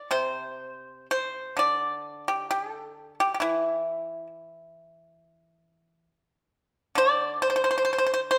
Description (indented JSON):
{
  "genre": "chinese traditional, Chinese solo plucked strings",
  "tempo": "67 BPM",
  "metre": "4/4",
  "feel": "rubato",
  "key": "unclear",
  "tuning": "A4 = 440 Hz",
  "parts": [
    { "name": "pipa", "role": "solo", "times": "0.0-8.4 s", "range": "C3 to D5", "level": "-27 LUFS", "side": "equal", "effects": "none" }
  ],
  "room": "moderate recital hall reverb, RT60 1.4 s",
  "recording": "none",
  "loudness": "-27 LUFS",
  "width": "mono",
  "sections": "0.0-8.4 A section",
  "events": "none",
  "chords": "none"
}